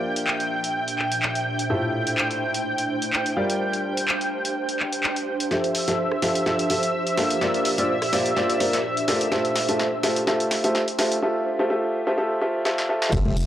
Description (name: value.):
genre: piano house.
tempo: 126 BPM.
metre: 4/4.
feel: swing 55% on 16ths.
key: F major.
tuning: A4 = 440 Hz.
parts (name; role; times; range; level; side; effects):
analog string pad; sustained chords; 0.0-11.2 s; E5 to G5; -27 LUFS; equal; ensemble chorus, sidechain pumping.
warm upright piano; riff; 0.0-13.5 s; A2 to F5; -24 LUFS; equal; sidechain pumping, low-pass filter, analog delay.
ethereal airy pad; texture; 0.0-11.2 s; Bb2 to F5; -28 LUFS; right 2 dB; ensemble chorus, built-in reverb, sidechain pumping.
punchy analog drum machine; drums; 0.2-13.5 s; crash cymbal, handclaps, hi-hat, rim click, snare drum; -27 LUFS; equal; high-pass filter on hats, high-pass filter on snare, high-pass filter on cymbals.
organ-like FM bass; bass; 13.1-13.5 s; F1; -23 LUFS; equal; sidechain pumping.
electronic kick drum; drums; 13.1-13.2 s; none; -25 LUFS; equal; none.
tambourine and congas; percussion; 13.1-13.5 s; none; -31 LUFS; left 3 dB; none.
room: light reverb.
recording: dry, gritty hardware recording, cassette tape, high-pass filter.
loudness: -21 LUFS.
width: side -12 dB against mid.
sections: 0.0-5.5 A section; 5.5-13.1 B section.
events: build-up 5.5-13.1; drum fill 5.5-11.2, 12.7-13.1; filter sweep on upright piano 5.5-13.1.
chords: 0.0 Bb69; 1.7 Fmaj9/A; 3.4 Gm7; 5.5 Fmaj9; 7.4 Bb69; 9.3 Fmaj9/A.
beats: 0.27 0.75 1.22 | 1.70 2.18 2.65 3.13 | 3.60 4.08 4.56 5.03 | 5.51 5.99 6.46 6.94 | 7.41 7.89 8.37 8.84 | 9.32 9.79 10.27 10.75 | 11.22 11.70 12.18 12.65 | 13.13.